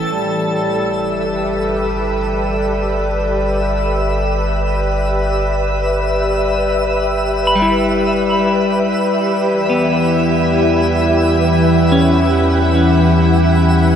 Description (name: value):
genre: ambient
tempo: free time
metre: none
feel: none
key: G lydian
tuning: A4 = 440 Hz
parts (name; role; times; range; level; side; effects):
- soft additive organ-like pad; sustained chords; 0.0-14.0 s; A2 to E6; -16 LUFS; equal; ensemble chorus, built-in reverb
- clean electric guitar; arpeggios; 0.0-14.0 s; G3 to B5; -19 LUFS; left 1 dB; spring reverb, diffuse ambient delay
- round analog bass; bass; 0.0-14.0 s; G1 to E2; -20 LUFS; equal; none
- twinkling granular texture; texture; 0.0-14.0 s; E5 to A5; -23 LUFS; equal; built-in reverb
- hand-pumped harmonium; drone; 0.1-14.0 s; G3; -22 LUFS; left 2 dB; none
room: wet huge ambient reverb, RT60 7.3 s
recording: none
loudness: -13 LUFS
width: side -8 dB against mid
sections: 0.1-14.0 A section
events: none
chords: 0.1 G; 9.0 Emadd9